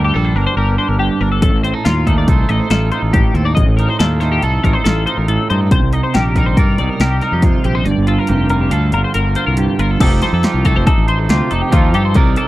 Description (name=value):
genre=math rock and midwest emo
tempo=140 BPM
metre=5/4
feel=straight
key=unclear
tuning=A4 = 436 Hz
part: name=twangy electric guitar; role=accompaniment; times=0.0-12.5 s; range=G2 to F5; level=-18 LUFS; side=right 5 dB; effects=none
part: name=twelve-string electric guitar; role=arpeggios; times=0.0-12.5 s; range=F4 to Eb5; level=-21 LUFS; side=left 6 dB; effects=analog chorus
part: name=fuzz fingered electric bass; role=bass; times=0.0-12.4 s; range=F1 to G2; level=-16 LUFS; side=equal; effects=overdrive
part: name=punchy analog drum machine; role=drums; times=1.4-12.5 s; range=crash cymbal, hi-hat, kick drum, snare drum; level=-15 LUFS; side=equal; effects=none
room=little or no reverb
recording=dry, close 1970s-style studio recording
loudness=-12 LUFS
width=side -16 dB against mid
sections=0.0-10.0 A section; 10.0-12.5 B section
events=kick and snare drop out 7.9-10.0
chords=0.0 Gmadd9; 1.4 F7/A; 5.7 Cm7; 7.9 Gm7; 10.0 F9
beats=0.15 0.57 1.00 | 1.43 1.86 2.28 2.71 3.14 | 3.57 4.00 4.42 4.85 5.28 | 5.71 6.14 6.57 7.00 7.43 | 7.86 8.29 8.72 9.15 9.58 | 10.01 10.44 10.87 11.30 11.73 | 12.16